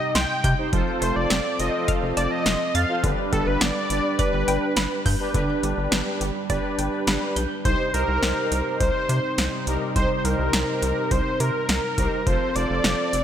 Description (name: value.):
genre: synth-pop.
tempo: 104 BPM.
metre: 4/4.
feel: straight.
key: C dorian.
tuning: A4 = 439 Hz.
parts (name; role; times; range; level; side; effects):
wide unison lead; melody; 0.0-13.2 s; A4 to G5; -25 LUFS; equal; none.
analog synth brass; accompaniment; 0.0-13.2 s; D4 to Eb5; -29 LUFS; equal; chorus.
chorused pulse-width pad; sustained chords; 0.0-13.2 s; C3 to B4; -30 LUFS; equal; none.
analog pluck; arpeggios; 0.2-7.5 s; D3 to A6; -30 LUFS; right 2 dB; chorus, ping-pong delay.
rubbery square bass; bass; 0.2-13.2 s; F1 to C3; -26 LUFS; equal; none.
electro analog drum machine; drums; 0.2-13.2 s; hi-hat, kick drum, snare drum; -26 LUFS; equal; overdrive.
room: moderate lush hall reverb, RT60 2.6 s.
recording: bright 1980s-style digital production.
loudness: -20 LUFS.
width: side -9 dB against mid.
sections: 0.0-5.3 A section; 5.3-7.7 B section; 7.7-13.2 C section.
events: none.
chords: 0.0 Cm; 0.7 F; 3.0 G; 7.7 Cm; 12.3 F.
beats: 0.15 | 0.73 1.30 1.88 2.46 | 3.04 3.61 4.19 4.77 | 5.34 5.92 6.50 7.08 | 7.65 8.23 8.80 9.38 | 9.96 10.54 11.11 11.69 | 12.27 12.84.